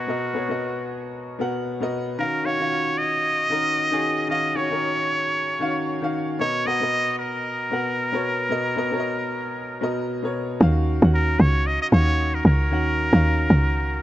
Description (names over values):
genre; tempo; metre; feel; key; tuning
amapiano; 114 BPM; 4/4; swing 58% on 16ths; Eb minor; A4 = 440 Hz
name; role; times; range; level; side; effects
trumpet with straight mute; melody; 0.0-14.0 s; F#4 to Eb5; -24 LUFS; equal; digital delay
clear concert grand piano; accompaniment; 0.0-14.0 s; B2 to F#5; -26 LUFS; left 1 dB; none
tight log drum bass; bass; 10.6-14.0 s; Db2 to Eb2; -18 LUFS; equal; none
room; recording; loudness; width
light reverb; nothing above 8.0 kHz; -20 LUFS; side -14 dB against mid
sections
0.0-10.6 A section; 10.6-14.0 B section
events
drop 10.6-14.0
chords
0.0 Bmaj7; 2.2 Ebm9; 6.4 Bmaj7; 10.6 Ebm9